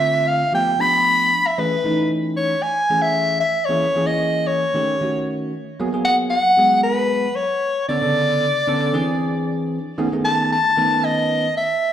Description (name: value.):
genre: jazz.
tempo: 114 BPM.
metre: 4/4.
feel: straight.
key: G# phrygian from 5.8 s.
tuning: A4 = 439 Hz.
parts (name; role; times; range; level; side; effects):
clear soprano saxophone; melody; 0.0-11.9 s; B4 to B5; -18 LUFS; left 1 dB; plate reverb, slapback echo.
bell-like tine electric piano; accompaniment; 0.0-11.5 s; C#3 to B4; -22 LUFS; right 1 dB; lush chorus, plate reverb, slapback echo.
room: moderate club reverb, RT60 0.5 s.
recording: live gig heard through the venue's PA, club reverb.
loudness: -17 LUFS.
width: side -10 dB against mid.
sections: 0.0-5.8 A section; 5.8-11.9 B section.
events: none.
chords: 0.0 Dm7; 0.5 G9; 1.6 Amaj7; 3.7 A#m7b5; 4.7 A7#11; 5.8 G#m9; 7.9 Bm9; 8.9 Eaug7; 10.0 Amaj9#11.